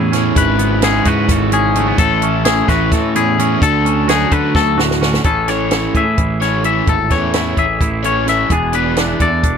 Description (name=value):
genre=math rock and midwest emo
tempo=258 BPM (eighths)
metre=7/8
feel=straight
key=A major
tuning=A4 = 440 Hz
part: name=twangy electric guitar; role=accompaniment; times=0.0-9.6 s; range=E2 to A4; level=-20 LUFS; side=right 9 dB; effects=none
part: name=twangy electric guitar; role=arpeggios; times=0.0-9.6 s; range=G#4 to E5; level=-18 LUFS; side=left 9 dB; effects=none
part: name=overdriven semi-hollow guitar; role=riff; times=0.0-9.3 s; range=G#2 to D5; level=-19 LUFS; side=left 1 dB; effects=none
part: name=fuzz picked electric bass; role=bass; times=0.0-9.6 s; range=E1 to D3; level=-19 LUFS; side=equal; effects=overdrive
part: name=compact cocktail drum kit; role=drums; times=0.1-9.5 s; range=hi-hat, kick drum, snare drum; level=-18 LUFS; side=equal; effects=none
room=light reverb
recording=none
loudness=-12 LUFS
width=side -7 dB against mid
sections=0.0-5.2 A section; 5.2-9.6 B section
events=drum fill 4.5-5.2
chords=0.4 C#m7/G#; 2.0 Amaj7; 3.6 Dmaj7; 5.2 Amaj7; 8.5 E7